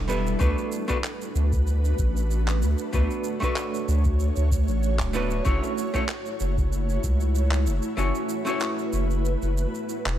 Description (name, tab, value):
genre	sunset chillout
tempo	95 BPM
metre	4/4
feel	swing 54% on 16ths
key	B minor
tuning	A4 = 440 Hz
part	archtop guitar, miked and amplified	accompaniment	0.0-10.2 s	G3 to C#5	-29 LUFS	equal	auto-pan, tape echo
part	ethereal airy pad	sustained chords	0.0-10.2 s	G3 to C#5	-31 LUFS	equal	ensemble chorus, built-in reverb, tremolo
part	round analog bass	bass	0.0-10.2 s	D1 to D2	-23 LUFS	equal	none
part	shaker and handclaps	drums	0.1-10.2 s	none	-35 LUFS	right 2 dB	none
part	electronic kick drum	drums	0.4-7.2 s	none	-26 LUFS	equal	none
room	small room ambience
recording	none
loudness	-22 LUFS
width	side -11 dB against mid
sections	0.0-10.2 A section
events	kick drops out 8.0-10.2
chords	0.4 Bm7; 5.5 F#m7